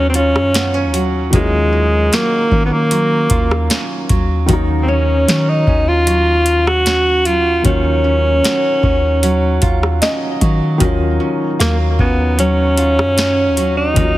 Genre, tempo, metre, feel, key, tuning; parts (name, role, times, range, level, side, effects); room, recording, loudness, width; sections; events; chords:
contemporary R&B; 76 BPM; 4/4; straight; Eb minor; A4 = 440 Hz
breathy alto saxophone; melody; 0.0-14.2 s; Ab3 to Gb4; -15 LUFS; equal; tape echo
felt-muted upright piano; accompaniment; 0.0-14.2 s; Eb3 to Eb5; -23 LUFS; left 2 dB
nylon-string guitar; arpeggios; 0.0-14.2 s; Eb3 to F4; -22 LUFS; right 2 dB; tape echo
soft 808-style bass; bass; 0.0-14.2 s; Eb2 to Eb3; -17 LUFS; equal
booming analog drum machine; drums; 0.1-14.2 s; hi-hat, kick drum, rim click, snare drum; -18 LUFS; equal
soft synth bell; texture; 4.9-14.2 s; Db5 to F5; -27 LUFS; equal; chorus, tape echo
light reverb, small room ambience; heavily compressed radio sound, multiband compression; -12 LUFS; side -16 dB against mid
0.0-14.2 A section
felt piano fill 9.6-10.8
0.0 Ebm9